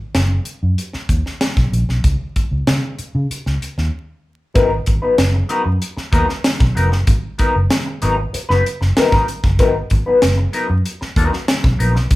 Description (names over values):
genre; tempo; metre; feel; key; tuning
funk; 95 BPM; 4/4; straight; G# minor; A4 = 441 Hz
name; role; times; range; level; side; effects
vintage muted fingered electric bass; bass; 0.1-12.2 s; E#1 to C#3; -18 LUFS; equal; none
crisp fusion drum kit; drums; 0.1-12.2 s; hi-hat, kick drum, snare drum; -18 LUFS; equal; none
mellow electric guitar; accompaniment; 4.5-12.0 s; F#3 to B4; -17 LUFS; left 2 dB; wah
room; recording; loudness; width
light reverb; band playing live in one room, vinyl crackle; -15 LUFS; side -18 dB against mid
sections
0.0-4.6 A section; 4.6-12.2 B section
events
break 3.9-4.6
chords
0.0 G#m9 (rootless); 2.0 N.C.; 4.6 G#m9